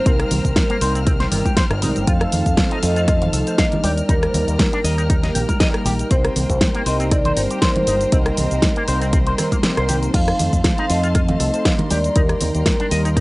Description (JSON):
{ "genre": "nu-disco, nu disco", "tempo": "119 BPM", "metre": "4/4", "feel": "swing 54% on 16ths", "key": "C dorian", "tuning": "A4 = 441 Hz", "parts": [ { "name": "vibraphone with medium mallets", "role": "melody", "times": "0.0-13.2 s", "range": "Bb4 to G5", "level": "-24 LUFS", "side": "equal", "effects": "cassette tape, tape echo" }, { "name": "mellow synth brass", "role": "accompaniment", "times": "0.0-13.2 s", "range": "Eb3 to D5", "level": "-24 LUFS", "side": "right 1 dB", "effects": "chorus, sidechain pumping, cassette tape" }, { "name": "clear studio string section", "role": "sustained chords", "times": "0.0-13.2 s", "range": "C5 to F6", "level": "-32 LUFS", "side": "left 1 dB", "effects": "sidechain pumping, cassette tape" }, { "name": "electric guitar with an envelope filter", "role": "riff", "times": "0.1-13.2 s", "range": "C3 to F5", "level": "-26 LUFS", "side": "left 2 dB", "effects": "lush chorus, cassette tape" }, { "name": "fingered electric bass with an envelope filter", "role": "bass", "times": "0.1-13.2 s", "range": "G1 to F2", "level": "-21 LUFS", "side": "equal", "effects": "none" }, { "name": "electronic kick drum", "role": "drums", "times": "0.1-13.2 s", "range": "none", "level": "-19 LUFS", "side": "equal", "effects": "cassette tape" }, { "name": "pop drum kit", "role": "drums", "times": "0.1-13.2 s", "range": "crash cymbal, hi-hat, rim click, shaker, snare drum", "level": "-22 LUFS", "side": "equal", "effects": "cassette tape" }, { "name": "cabasa and congas", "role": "percussion", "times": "0.1-13.2 s", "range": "none", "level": "-26 LUFS", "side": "right 1 dB", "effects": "none" } ], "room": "light reverb", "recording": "home recording on cassette, nothing above 10.9 kHz", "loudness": "-15 LUFS", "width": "side -22 dB against mid", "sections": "0.0-13.2 A section", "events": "kick drops out 9.6-10.1", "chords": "0.0 Cm7; 2.1 F7; 3.8 Ebmaj7; 6.1 Cm7; 10.1 F7; 11.9 Ebmaj7", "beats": "| 0.06 0.56 1.07 1.57 | 2.08 2.58 3.08 3.59 | 4.09 4.60 5.10 5.61 | 6.11 6.61 7.12 7.62 | 8.13 8.63 9.13 9.64 | 10.14 10.65 11.15 11.66 | 12.16 12.66 13.17" }